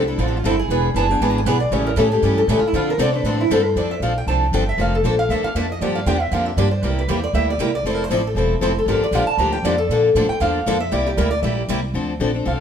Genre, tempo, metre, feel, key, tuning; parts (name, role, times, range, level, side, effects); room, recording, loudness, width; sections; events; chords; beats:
acoustic string swing (jazz manouche); 235 BPM; 4/4; swing 55% on 8ths; D minor, F major from 3.8 s; A4 = 440 Hz
picked old ladder-braced acoustic guitar; melody; 0.0-12.6 s; E4 to Bb5; -21 LUFS; equal
picked steel-string acoustic guitar; accompaniment; 0.0-12.6 s; C3 to A4; -23 LUFS; left 4 dB
picked steel-string acoustic guitar; accompaniment; 0.0-11.8 s; C3 to B4; -26 LUFS; right 8 dB
upright bass; bass; 0.0-12.6 s; E1 to D3; -22 LUFS; equal
moderate large studio reverb, RT60 0.9 s; band playing live in one room; -17 LUFS; side -8 dB against mid
0.0-3.8 A section; 3.8-11.9 A section
steel-string acoustic guitar solo 0.0-11.9
0.0 Dm7; 0.7 E7; 1.7 A7; 2.7 Dm7; 3.8 F69; 4.8 Bbmaj7/F; 5.8 Gm7; 6.8 C9; 7.8 Fmaj7; 8.9 Gm7; 9.9 Bbmaj7; 10.9 C9; 11.9 Dm7
0.18 0.44 | 0.69 0.95 1.20 1.46 | 1.71 1.97 2.23 2.48 | 2.73 2.99 3.25 3.50 | 3.76 4.01 4.27 4.52 | 4.78 5.03 5.29 5.54 | 5.80 6.05 6.31 6.57 | 6.82 7.08 7.33 7.59 | 7.84 8.10 8.36 8.61 | 8.87 9.12 9.38 9.64 | 9.89 10.15 10.41 10.66 | 10.92 11.18 11.43 11.69 | 11.95 12.20 12.46